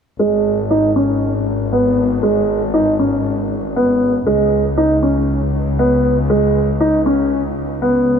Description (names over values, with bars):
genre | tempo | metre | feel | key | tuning
piano and strings electronica | 118 BPM | 4/4 | straight | G# minor | A4 = 440 Hz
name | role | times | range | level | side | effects
dark upright piano | riff | 0.2-8.2 s | G#3 to D#4 | -15 LUFS | right 1 dB | low-pass filter, ping-pong delay
rich studio double bass section | bass | 0.2-8.2 s | G#1 to C#2 | -20 LUFS | left 2 dB | none
room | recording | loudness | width
moderate huge ambient reverb, RT60 5.1 s | none | -14 LUFS | side -7 dB against mid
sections
0.2-8.2 A section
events
filter sweep on upright piano 0.2-8.2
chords
0.2 G#m; 4.3 C#5